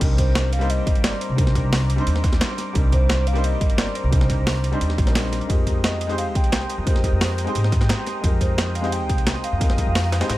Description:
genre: liquid drum and bass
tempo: 175 BPM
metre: 4/4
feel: straight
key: unclear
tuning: A4 = 440 Hz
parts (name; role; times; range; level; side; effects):
- clear baby grand piano; accompaniment; 0.0-10.4 s; G3 to C5; -27 LUFS; left 1 dB; ping-pong delay
- warm analog pad; sustained chords; 0.0-10.4 s; G5 to Eb6; -35 LUFS; equal; chorus, sidechain pumping
- upright bass; bass; 0.0-10.4 s; G1 to Ab2; -22 LUFS; equal; none
- breakbeat sampler-style drum kit; drums; 0.0-10.4 s; crash cymbal, hi-hat, snare drum; -26 LUFS; right 1 dB; low-pass filter on hats, low-pass filter on cymbals, low-pass filter on snare
- electronic kick drum; drums; 0.0-9.9 s; none; -21 LUFS; equal; none
- jungle sampler-style drum kit; drums; 0.0-10.4 s; hi-hat, ride cymbal, snare drum; -33 LUFS; right 1 dB; high-pass filter on cymbals, low-pass filter on cymbals, high-pass filter on snare, low-pass filter on snare, high-pass filter on hats, low-pass filter on hats
- hollow clarinet-like synth lead; melody; 0.2-10.4 s; C5 to G5; -30 LUFS; equal; chorus, ping-pong delay
room: little or no reverb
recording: dark, warm production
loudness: -18 LUFS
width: side -16 dB against mid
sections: 0.0-10.4 A section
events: drop 0.0-10.4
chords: 0.0 Cm9; 5.5 Fm11

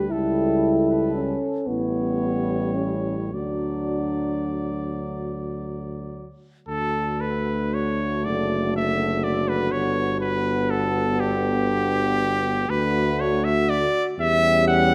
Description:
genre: classical, hymn-like piece for brass band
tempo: 35-41 BPM (dotted quarters)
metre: 6/8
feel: rubato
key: D major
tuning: A4 = 439 Hz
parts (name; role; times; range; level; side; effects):
- clear cornet; melody; 0.0-14.9 s; G4 to F#5; -28 LUFS; equal; none
- clear euphonium; accompaniment; 0.0-14.9 s; D3 to G3; -34 LUFS; equal; none
- mellow euphonium; accompaniment; 0.0-14.9 s; A3 to E4; -29 LUFS; equal; none
- mellow tuba; bass; 0.0-14.9 s; F#1 to E2; -30 LUFS; equal; none
- mellow French horn section; second line; 0.1-14.9 s; E4 to A4; -32 LUFS; equal; none
room: moderate concert hall reverb, RT60 1.9 s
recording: close, detailed microphones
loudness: -23 LUFS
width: mono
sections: 0.0-6.7 A section; 6.7-14.9 A section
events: none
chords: 0.1 A7/C#; 1.7 A7; 3.3 D; 8.2 D/F#; 9.7 Gmaj7; 12.7 D; 14.2 C#dim/E

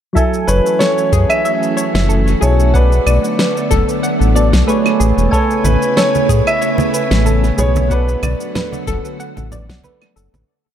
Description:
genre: sunset chillout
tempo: 93 BPM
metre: 4/4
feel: swing 54% on 16ths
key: B dorian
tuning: A4 = 440 Hz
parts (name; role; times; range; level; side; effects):
- soft electric-piano-like synth keys; accompaniment; 0.1-8.1 s; F#3 to G#5; -20 LUFS; moving between left 2 dB and right 4 dB; chorus, auto-pan, low-pass filter, dub echo
- clear grand piano; melody; 0.2-8.5 s; A4 to E5; -19 LUFS; right 1 dB; analog delay
- soft string machine; sustained chords; 0.4-10.5 s; C#3 to G#5; -21 LUFS; equal; ensemble chorus
- soft round pluck; arpeggios; 0.2-10.5 s; G#4 to F#5; -22 LUFS; left 1 dB; chorus, dub echo
- electronic cabasa, snare drum and claves; drums; 0.2-10.5 s; none; -21 LUFS; equal; analog delay
- electronic kick drum; drums; 0.2-9.8 s; none; -18 LUFS; equal; none
- round analog bass; bass; 0.5-10.4 s; E1 to A2; -14 LUFS; equal; none
- congas; percussion; 5.7-10.5 s; none; -24 LUFS; right 3 dB; analog delay
room: moderate spring reverb, RT60 1.8 s, digital ambience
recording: echo-heavy mix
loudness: -12 LUFS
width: side -10 dB against mid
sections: 0.2-10.5 groove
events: filter sweep on synth keys 0.2-10.5; fade-out 7.0-10.5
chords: 0.2 F#m9; 2.7 Bm7; 5.0 Amaj9; 7.9 Bm7

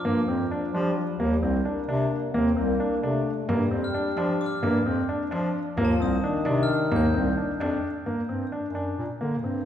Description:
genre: contemporary instrumental, chamber music in an uneven meter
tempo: 262 BPM (eighths)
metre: 5/8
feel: straight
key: unclear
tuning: A4 = 440 Hz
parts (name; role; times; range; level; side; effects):
- dark French horn; second line; 0.0-7.8 s; Eb3 to C4; -30 LUFS; left 2 dB; none
- warm concert grand piano; arpeggios; 0.0-9.6 s; Bb3 to D4; -26 LUFS; equal; none
- clear bass clarinet; bass; 0.0-9.7 s; C2 to F3; -28 LUFS; equal; none
- glockenspiel with brass mallets; texture; 0.0-0.8, 3.8-8.0 s; A5 to G6; -36 LUFS; equal; none
- frame drum; percussion; 3.5-8.0 s; none; -34 LUFS; right 1 dB; none
room: wet scoring stage reverb, RT60 2.0 s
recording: heard from further back in the room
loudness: -23 LUFS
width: side -10 dB against mid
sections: 0.0-8.1 A section; 8.1-9.7 B section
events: none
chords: 0.0 Gm; 1.2 Eb; 3.5 G5; 5.8 Eb; 8.1 Gm

